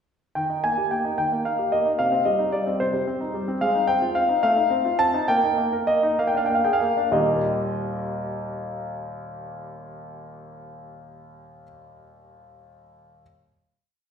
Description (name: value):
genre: classical-period piano sonatina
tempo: 61-75 BPM (dotted quarters)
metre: 6/8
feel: rubato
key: Eb major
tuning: A4 = 440 Hz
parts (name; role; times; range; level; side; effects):
- warm grand piano; solo; 0.4-13.2 s; Eb2 to A5; -21 LUFS; equal; none
room: wet recital hall reverb, RT60 1.7 s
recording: recorded in a church or concert hall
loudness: -20 LUFS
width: side -7 dB against mid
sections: 0.4-7.1 theme; 7.1-11.0 final chord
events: slowing down 2.8-7.1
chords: 0.4 Eb; 2.0 Cm; 3.6 Fm7/Ab; 4.4 F7/A; 5.3 Eb/Bb; 6.2 Bb7; 7.1 Eb